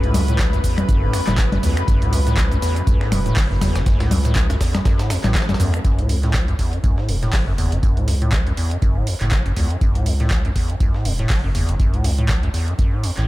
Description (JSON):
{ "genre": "acid house", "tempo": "121 BPM", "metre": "4/4", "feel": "swing 56% on 16ths", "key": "F# minor pentatonic", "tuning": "A4 = 440 Hz", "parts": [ { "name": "lush unison pad", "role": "sustained chords", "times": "0.0-5.8 s", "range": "C#3 to B4", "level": "-27 LUFS", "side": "left 2 dB", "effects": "chorus, sidechain pumping" }, { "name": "acid bass, square", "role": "riff", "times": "0.0-13.3 s", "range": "E2 to F#3", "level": "-22 LUFS", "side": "equal", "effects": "analog chorus, cassette tape, sidechain pumping, tape echo" }, { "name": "saturated sub bass", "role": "bass", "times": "0.0-13.3 s", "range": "E1 to F#2", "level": "-22 LUFS", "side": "equal", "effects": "sidechain pumping" }, { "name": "punchy analog drum machine", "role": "drums", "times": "0.0-13.3 s", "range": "congas, finger snaps, handclaps, hi-hat, shaker", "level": "-26 LUFS", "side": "equal", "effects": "overdrive" }, { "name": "breakbeat sampler-style drum kit", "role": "drums", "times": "0.1-13.2 s", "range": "hi-hat, snare drum, tambourine", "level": "-35 LUFS", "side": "equal", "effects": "high-pass filter on snare, high-pass filter on perc, high-pass filter on hats, high-pass filter on room, tape echo" }, { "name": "electronic kick drum", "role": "drums", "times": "0.4-12.9 s", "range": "none", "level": "-20 LUFS", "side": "equal", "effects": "none" } ], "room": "digital ambience", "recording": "echo-heavy mix", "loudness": "-16 LUFS", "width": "side -17 dB against mid", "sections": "0.0-5.8 A section; 5.8-13.3 B section", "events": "drop 0.0-5.8", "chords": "0.0 F#m" }